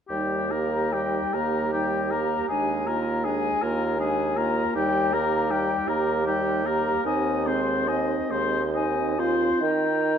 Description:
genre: classical, slow romantic movement for wind quintet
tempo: 44-54 BPM (dotted quarters)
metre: 6/8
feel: rubato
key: Eb major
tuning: A4 = 440 Hz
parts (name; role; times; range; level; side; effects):
- concert flute; melody; 0.1-10.2 s; G5 to C6; -30 LUFS; left 6 dB; none
- warm oboe; second line; 0.1-10.2 s; G4 to G5; -29 LUFS; left 3 dB; none
- warm French horn; accompaniment; 0.1-10.2 s; G3 to F4; -30 LUFS; equal; none
- warm clarinet; accompaniment; 0.1-10.2 s; C4 to Bb4; -30 LUFS; right 6 dB; none
- clear bassoon; bass; 0.1-10.2 s; Eb2 to Eb3; -27 LUFS; right 2 dB; none
room: moderate concert hall reverb, RT60 2.3 s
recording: dark, warm production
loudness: -22 LUFS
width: side -8 dB against mid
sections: 0.1-9.6 A section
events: none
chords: 0.1 Eb; 2.5 Bb7/Eb; 4.8 Eb; 7.0 Ab/Eb; 9.6 Eb

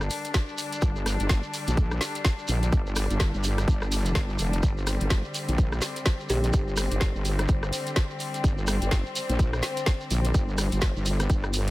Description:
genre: bass house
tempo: 126 BPM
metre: 4/4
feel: swing 59% on 16ths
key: G minor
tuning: A4 = 440 Hz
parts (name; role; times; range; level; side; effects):
- warm chamber string section; sustained chords; 0.0-11.7 s; D3 to D4; -34 LUFS; left 2 dB; sidechain pumping, low-pass filter
- wobble bass; bass; 0.0-11.7 s; F1 to Bb1; -26 LUFS; equal; chorus, sidechain pumping
- garage drum kit; drums; 0.0-11.7 s; hi-hat, rim click, snare drum; -32 LUFS; equal; none
- shekere; percussion; 0.0-11.7 s; none; -36 LUFS; right 2 dB; none
- electronic kick drum; drums; 0.3-11.4 s; none; -23 LUFS; equal; none
- kalimba; melody; 6.3-6.4 s; G4; -34 LUFS; equal; digital delay
room: small room ambience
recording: none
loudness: -23 LUFS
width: side -18 dB against mid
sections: 0.0-11.7 A section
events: none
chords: 0.0 G5

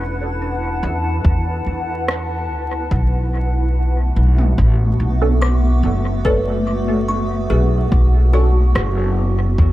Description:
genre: ambient dub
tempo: 72 BPM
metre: 4/4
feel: straight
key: B dorian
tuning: A4 = 440 Hz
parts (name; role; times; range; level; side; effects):
- granular cloud pad; sustained chords; 0.0-9.7 s; A3 to A5; -23 LUFS; equal; built-in reverb
- kalimba; arpeggios; 0.0-9.7 s; C#4 to D6; -27 LUFS; left 1 dB; dub echo
- upright bass; bass; 0.0-9.7 s; E1 to E2; -16 LUFS; equal; tube saturation
- electronic kick drum; drums; 1.2-9.7 s; none; -18 LUFS; equal; overdrive
- organic electronic drum kit; drums; 2.1-8.9 s; rim click, toms; -26 LUFS; equal; dub echo
- filtered dub chord stab; stabs; 5.2-8.5 s; C#4 to A4; -27 LUFS; right 1 dB; phaser, analog chorus, dub echo
room: little or no reverb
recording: vinyl crackle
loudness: -15 LUFS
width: side -16 dB against mid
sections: 0.0-9.7 A section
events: none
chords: 0.0 E9sus4; 2.9 Bm9

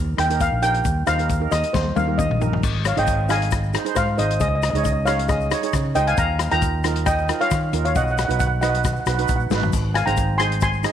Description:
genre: calypso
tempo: 135 BPM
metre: 4/4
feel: straight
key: Ab major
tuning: A4 = 439 Hz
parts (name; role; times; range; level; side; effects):
- fretless electric bass; bass; 0.0-10.8 s; Ab1 to Eb3; -23 LUFS; equal; none
- steel pan; melody; 0.2-10.9 s; Ab4 to C6; -22 LUFS; left 1 dB; none
- steel pan; accompaniment; 0.2-10.9 s; Eb4 to Eb5; -28 LUFS; right 14 dB; none
- vintage drum kit; drums; 0.2-10.9 s; crash cymbal, hi-hat, kick drum, rim click, snare drum, splash cymbal, toms; -24 LUFS; left 3 dB; none
- tube shaker; percussion; 0.4-10.9 s; none; -40 LUFS; left 14 dB; none
room: light reverb, small room ambience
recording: 1960s-style stereo with parts hard left and right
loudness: -18 LUFS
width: side -10 dB against mid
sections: 0.0-2.6 A section; 2.6-10.9 B section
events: steel pan solo 0.0-2.6; drum fill 1.7-2.6, 9.5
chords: 0.0 Eb; 2.6 Ab; 4.4 Dbsus2; 6.2 Ebsus2; 8.0 B; 9.7 Ab

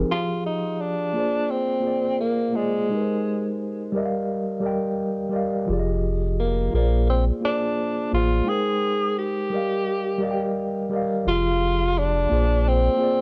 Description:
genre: hip hop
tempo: 86 BPM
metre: 4/4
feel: swing 60% on 16ths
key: F dorian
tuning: A4 = 440 Hz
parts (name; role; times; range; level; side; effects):
- mellow tine electric piano; accompaniment; 0.0-13.2 s; F3 to G5; -28 LUFS; equal; low-pass filter, plate reverb
- warm sub bass; bass; 0.0, 5.7-12.9 s; F1 to Bb1; -25 LUFS; equal; transformer saturation
- breathy tenor saxophone; melody; 0.1-13.2 s; Ab3 to Ab4; -26 LUFS; equal; low-pass filter, plate reverb
room: moderate small room reverb, RT60 0.6 s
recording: worn, warbling old tape, cassette tape, warbly pitch drift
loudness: -23 LUFS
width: mono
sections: 0.1-11.3 A section; 11.3-13.2 B section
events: none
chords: 0.1 Fm; 1.1 Bb9; 2.9 Abmaj9; 3.9 Ebmaj9/G; 5.7 Fm7; 6.7 Bb9; 8.5 Abmaj9; 9.5 Ebmaj9/G; 11.3 Fm; 12.3 Bb9

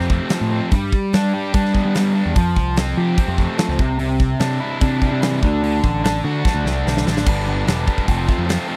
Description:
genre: classic rock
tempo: 147 BPM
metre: 4/4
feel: straight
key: unclear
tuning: A4 = 440 Hz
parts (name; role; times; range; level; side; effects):
- cranked stack guitar; riff; 0.0-8.8 s; G2 to G4; -24 LUFS; equal; overdrive
- growling picked electric bass; bass; 0.0-8.6 s; E1 to G3; -22 LUFS; equal; overdrive
- big rock drum kit; drums; 0.0-8.6 s; crash cymbal, hi-hat, kick drum, snare drum; -21 LUFS; equal; none
room: little or no reverb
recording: dry, close 1970s-style studio recording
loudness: -19 LUFS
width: mono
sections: 0.0-7.3 A section; 7.3-8.8 B section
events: drum fill 6.4-7.3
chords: 0.0 Fadd9; 0.7 G; 2.4 Fadd9; 3.8 Cadd9; 5.4 D; 7.3 G; 8.1 F

